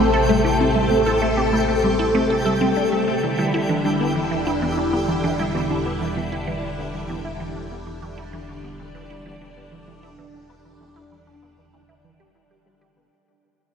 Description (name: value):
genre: ambient, sequencer-driven space music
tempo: 97 BPM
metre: 4/4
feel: straight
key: unclear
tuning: A4 = 440 Hz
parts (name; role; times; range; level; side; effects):
- phased string machine; sustained chords; 0.0-13.1 s; C3 to A4; -22 LUFS; equal; ensemble chorus, phaser
- soft round pluck; arpeggios; 0.0-13.1 s; G3 to E4; -26 LUFS; left 1 dB; chorus, auto-pan, ping-pong delay
- resonant blip pluck; riff; 0.0-13.1 s; E3 to E5; -26 LUFS; right 1 dB; phaser, vintage 12-bit sampler grit, ping-pong delay
- fat analog bass; bass; 0.0-13.1 s; E1 to A1; -31 LUFS; equal; none
- twinkling granular texture; texture; 0.0-13.1 s; G4 to G5; -30 LUFS; left 1 dB; built-in reverb
room: wet cathedral reverb, RT60 5.7 s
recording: in a vast, echoing space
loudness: -19 LUFS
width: side -7 dB against mid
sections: 0.0-13.1 A section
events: fade-out on synth arpeggio sound 0.0-13.1; fade-out 0.0-13.1; filter sweep on synth arpeggio sound 0.0-13.1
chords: 0.0 Am7; 3.2 Em7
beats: 0.14 | 0.75 1.37 1.99 2.61 | 3.23 3.85 4.46 5.08 | 5.70 6.32 6.94 7.56 | 8.18 8.79 9.41 10.03 | 10.65 11.27 11.89 12.51